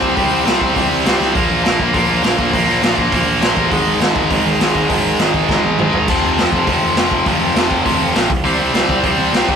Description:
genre	punk rock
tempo	203 BPM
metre	4/4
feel	straight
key	unclear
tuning	A4 = 439 Hz
part	tight distorted guitar	riff	0.0-9.6 s	F2 to C4	-14 LUFS	equal	distortion
part	fuzz picked electric bass	bass	0.0-9.6 s	F1 to C2	-22 LUFS	equal	overdrive
part	raw garage drum kit	drums	0.0-9.6 s	crash cymbal, hi-hat, kick drum, snare drum, toms	-18 LUFS	equal	none
room	light reverb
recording	rough rehearsal-room recording, warm saturation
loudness	-13 LUFS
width	side -7 dB against mid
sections	0.0-9.6 A section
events	drum fill 1.2, 5.5-6.1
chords	0.0 C5; 1.4 Bb5; 3.7 Ab5; 6.1 F5; 8.3 C5

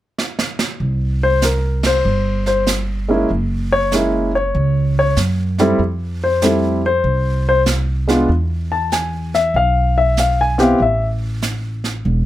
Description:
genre	jazz piano trio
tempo	96 BPM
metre	4/4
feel	swing 66% on 8ths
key	unclear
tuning	A4 = 440 Hz
part	jazz brush drum kit	drums	0.2-12.3 s	brushed snare drum, hi-hat, ride cymbal, snare drum	-24 LUFS	right 4 dB	none
part	upright bass	bass	0.8-12.3 s	E1 to F#2	-18 LUFS	right 1 dB	none
part	warm grand piano	melody	1.2-11.1 s	G3 to A5	-16 LUFS	left 2 dB	none
room	light reverb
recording	none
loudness	-15 LUFS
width	side -14 dB against mid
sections	0.8-12.3 A section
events	drum fill 0.2-0.8; band accent 1.7-2.1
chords	0.0 N.C.; 0.8 C5; 3.3 F#7; 5.8 F; 8.3 E5; 10.8 A5

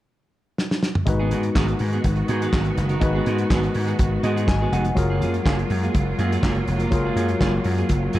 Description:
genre	disco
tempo	123 BPM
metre	4/4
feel	straight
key	G# dorian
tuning	A4 = 440 Hz
part	warm soul drum kit	drums	0.6-8.2 s	handclaps, hi-hat, kick drum, snare drum, toms	-24 LUFS	equal	none
part	barky tine electric piano	accompaniment	1.1-8.2 s	F#3 to G#5	-26 LUFS	left 4 dB	overdrive
part	clean electric guitar	accompaniment	1.1-8.2 s	A#3 to A#4	-29 LUFS	right 4 dB	wide subtle chorus
part	clear studio string section	sustained chords	1.1-8.2 s	D#3 to F#4	-28 LUFS	right 2 dB	none
part	vintage slap bass	bass	1.1-8.2 s	E#1 to G#2	-23 LUFS	equal	none
room	light reverb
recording	dark, warm production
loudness	-19 LUFS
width	side -15 dB against mid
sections	0.0-1.1 A section; 1.1-8.2 B section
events	drum fill 0.6-1.1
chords	0.0 N.C.; 1.1 G#m7; 5.0 F#maj9

